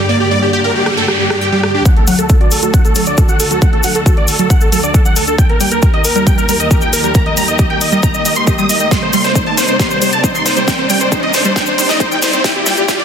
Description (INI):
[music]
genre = uplifting trance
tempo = 136 BPM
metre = 4/4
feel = straight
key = unclear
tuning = A4 = 440 Hz
[part]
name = dense compressed supersaw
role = melody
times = 0.0-13.0 s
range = G4 to Eb6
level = -16 LUFS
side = equal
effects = sidechain pumping, low-pass filter, ping-pong delay
[part]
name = dark symphonic string section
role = sustained chords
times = 0.0-13.0 s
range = D2 to D5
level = -21 LUFS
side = left 1 dB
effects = sidechain pumping
[part]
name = wide unison pluck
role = arpeggios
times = 0.0-13.0 s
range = F#3 to G5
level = -19 LUFS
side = right 2 dB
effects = phaser, sidechain pumping, ping-pong delay
[part]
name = noise sweep and riser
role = sound effects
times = 0.5-13.0 s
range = none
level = -22 LUFS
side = equal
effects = none
[part]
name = big-room dance drum kit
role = drums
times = 0.9-13.0 s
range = hi-hat, rim click, snare drum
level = -19 LUFS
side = equal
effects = high-pass filter on snare, sidechain pumping on hats, high-pass filter on hats
[part]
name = electronic kick drum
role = drums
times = 1.9-13.0 s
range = none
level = -12 LUFS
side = equal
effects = none
[part]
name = cabasa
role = percussion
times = 1.9-13.0 s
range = none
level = -21 LUFS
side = left 5 dB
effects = none
[sound]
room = light reverb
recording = dense, heavily limited modern master, high-pass filter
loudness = -10 LUFS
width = side -8 dB against mid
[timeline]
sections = 0.0-1.9 A section; 1.9-13.0 B section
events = noise sweep 0.5-1.9; build-up 1.9-13.0; filter sweep on supersaw synth 1.9-13.0; filter sweep on synth pluck 1.9-13.0; filter sweep 1.9-13.0; riser 1.9-13.0; drum fill 8.9-13.0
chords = 0.0 Gm; 1.9 D; 5.4 Eb; 8.9 Cm7; 12.4 Gm